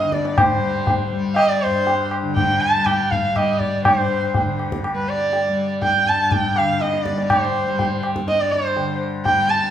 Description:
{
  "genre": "indian classical, Hindustani",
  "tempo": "122 BPM",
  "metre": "7/4",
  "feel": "straight",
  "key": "unclear",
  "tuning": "A4 = 440 Hz",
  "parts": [
    { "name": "rich sarangi", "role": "melody", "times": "0.0-9.7 s", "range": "B4 to A5", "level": "-20 LUFS", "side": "right 1 dB", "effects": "none" },
    { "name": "tanpura", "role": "drone", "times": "0.0-9.7 s", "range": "G2 to G3", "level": "-25 LUFS", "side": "left 2 dB", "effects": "none" },
    { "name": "tabla", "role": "percussion", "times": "0.1-9.4 s", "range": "none", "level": "-21 LUFS", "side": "equal", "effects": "none" }
  ],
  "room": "wet large studio reverb, RT60 1.5 s",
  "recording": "band playing live in one room",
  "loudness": "-17 LUFS",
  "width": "side -10 dB against mid",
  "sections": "0.0-9.7 A section",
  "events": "none",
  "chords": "none",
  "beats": "| 0.37 0.87 1.37 1.87 2.36 2.86 3.35 | 3.85 4.34 4.84 5.33 5.82 6.31 6.80 | 7.30 7.79 8.27 8.76 9.25"
}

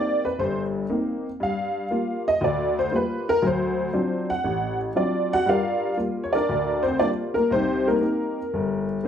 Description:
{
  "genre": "solo jazz",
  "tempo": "118 BPM",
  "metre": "4/4",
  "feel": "swing 69% on 8ths",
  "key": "G minor",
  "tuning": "A4 = 441 Hz",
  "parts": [
    { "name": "honky-tonk upright piano", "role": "solo", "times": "0.0-9.1 s", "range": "G1 to F#5", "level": "-22 LUFS", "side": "equal", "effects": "none" }
  ],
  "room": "moderate large studio reverb, RT60 1.1 s",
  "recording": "band playing live in one room",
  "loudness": "-22 LUFS",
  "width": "side -8 dB against mid",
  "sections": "0.0-5.5 A section; 5.5-9.1 B section",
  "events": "honky-tonk piano solo 0.0-5.5",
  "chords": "0.0 Cm7; 1.4 Gm7; 3.4 D7#9; 5.5 Gm7; 7.5 Cm7",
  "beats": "0.38 0.89 | 1.40 1.91 2.41 2.92 | 3.43 3.94 4.45 4.95 | 5.46 5.97 6.48 6.99 | 7.50 8.01 8.52 9.03"
}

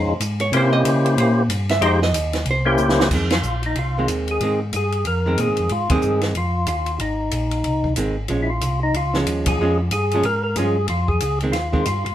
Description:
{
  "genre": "soul jazz organ trio",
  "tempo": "185 BPM",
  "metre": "4/4",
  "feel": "swing 61% on 8ths",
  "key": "F minor",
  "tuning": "A4 = 440 Hz",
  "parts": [
    { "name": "percussive tonewheel organ", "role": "melody", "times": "0.0-12.1 s", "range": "Ab3 to C5", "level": "-21 LUFS", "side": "left 1 dB", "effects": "slow rotary speaker, overdrive" },
    { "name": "archtop guitar, miked and amplified", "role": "accompaniment", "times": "0.0-11.9 s", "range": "Eb3 to E5", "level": "-23 LUFS", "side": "right 3 dB", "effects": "none" },
    { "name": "mellow tonewheel organ", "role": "bass", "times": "0.0-12.1 s", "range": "Ab1 to Db3", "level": "-22 LUFS", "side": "equal", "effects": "slow rotary speaker" },
    { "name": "compact cocktail drum kit", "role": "drums", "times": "0.2-12.1 s", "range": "crash cymbal, hi-hat, kick drum, ride cymbal, snare drum", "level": "-26 LUFS", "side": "equal", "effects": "none" }
  ],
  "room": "wet studio reverb, RT60 0.5 s",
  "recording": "band playing live in one room",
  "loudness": "-18 LUFS",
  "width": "side -12 dB against mid",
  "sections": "0.0-3.1 A section; 3.1-12.1 B section",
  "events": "hollow-body jazz guitar solo 0.0-3.1; drum fill 2.8-3.1; band accent 3.3, 5.9, 9.4",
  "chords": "0.0 Dbmaj7; 0.5 C7b9; 1.8 Fm7; 2.5 C7b9; 3.1 Fm7; 8.3 Bbm7; 10.9 Fm7",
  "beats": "0.21 | 0.53 0.85 1.18 1.50 | 1.82 2.14 2.47 2.79 | 3.11 3.44 3.76 4.08 | 4.41 4.73 5.06 5.38 | 5.70 6.03 6.35 6.68 | 7.00 7.32 7.65 7.97 | 8.30 8.62 8.95 9.27 | 9.59 9.92 10.24 10.57 | 10.89 11.22 11.54 11.87"
}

